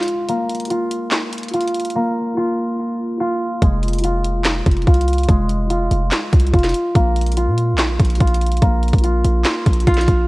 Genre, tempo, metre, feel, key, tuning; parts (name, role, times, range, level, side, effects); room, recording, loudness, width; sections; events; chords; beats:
hip hop, trap; 144 BPM; 4/4; half-time; A4 = 441 Hz
concert harp; arpeggios; 0.0-10.3 s; Ab3 to F4; -20 LUFS; equal; low-pass filter, ping-pong delay
trap drum kit; drums; 0.0-10.2 s; handclaps, hi-hat, kick drum, snare drum; -18 LUFS; equal; vintage 12-bit sampler grit
warm 808-style bass; bass; 3.6-10.3 s; F1 to Bb2; -17 LUFS; equal
little or no reverb; worn, warbling old tape, cassette tape, warbly pitch drift; -15 LUFS; side -21 dB against mid
0.0-10.3 A section
break 0.0-3.6; filter sweep on harp 0.0-10.3; drums muted 2.0-3.6
0.3 Bb5; 3.6 Fm; 7.0 Bb5
| 0.29 0.70 1.12 1.54 | 1.95 2.37 2.79 3.20 | 3.62 4.04 4.45 4.87 | 5.29 5.70 6.12 6.54 | 6.95 7.37 7.79 8.20 | 8.62 9.04 9.45 9.87